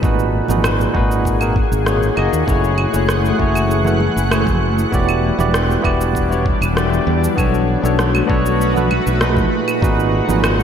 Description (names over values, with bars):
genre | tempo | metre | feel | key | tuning
sunset chillout | 98 BPM | 4/4 | straight | unclear | A4 = 440 Hz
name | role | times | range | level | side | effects
barky tine electric piano | accompaniment | 0.0-10.6 s | A#2 to D#5 | -19 LUFS | moving between left 6 dB and right 5 dB | medium stereo tremolo, auto-pan, ping-pong delay
shimmering ambient pad | sustained chords | 0.0-10.6 s | A#2 to F#5 | -21 LUFS | left 1 dB | chorus, built-in reverb, vintage 12-bit sampler grit
fingered electric bass | bass | 0.0-10.6 s | E1 to E2 | -18 LUFS | equal | none
electronic cabasa, rim click and claves | drums | 0.0-10.6 s | none | -24 LUFS | right 1 dB | gated reverb
electronic kick drum | drums | 0.0-9.9 s | none | -20 LUFS | equal | none
congas | percussion | 0.5-10.6 s | none | -28 LUFS | right 3 dB | none
room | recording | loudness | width
moderate lush hall reverb, RT60 2.9 s | bright 1980s-style digital production | -14 LUFS | side -8 dB against mid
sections
0.0-10.6 A section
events
none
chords
0.0 G#m9; 2.5 F#m9; 4.9 Em9; 7.4 Bm9; 9.5 G#m9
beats
| 0.03 0.64 1.26 1.87 | 2.48 3.09 3.71 4.32 | 4.93 5.54 6.15 6.77 | 7.38 7.99 8.60 9.21 | 9.83 10.44